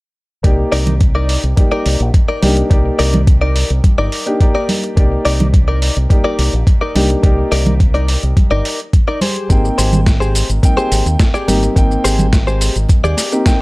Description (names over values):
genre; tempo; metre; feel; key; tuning
nu-disco, nu disco; 106 BPM; 4/4; straight; C minor; A4 = 439 Hz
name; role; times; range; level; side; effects
dark grand piano; accompaniment; 0.4-13.6 s; Bb3 to G5; -20 LUFS; equal; sidechain pumping
fingered electric bass with an envelope filter; bass; 0.4-13.1 s; G1 to Eb2; -15 LUFS; equal; none
dusty soul sampler-style drum kit; drums; 0.4-13.6 s; hi-hat, shaker, snare drum; -21 LUFS; right 1 dB; overdrive, small room reverb
electronic kick drum; drums; 0.4-13.6 s; none; -11 LUFS; equal; overdrive, small room reverb
direct-recorded clean electric guitar; riff; 0.7-13.3 s; Eb4 to D5; -19 LUFS; left 2 dB; analog chorus
congas; percussion; 0.9-13.0 s; none; -20 LUFS; right 2 dB; none
room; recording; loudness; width
little or no reverb; dry, gritty hardware recording, transformer saturation; -11 LUFS; side -22 dB against mid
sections
0.4-13.6 A section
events
none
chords
0.4 Cm9; 9.2 Abmaj7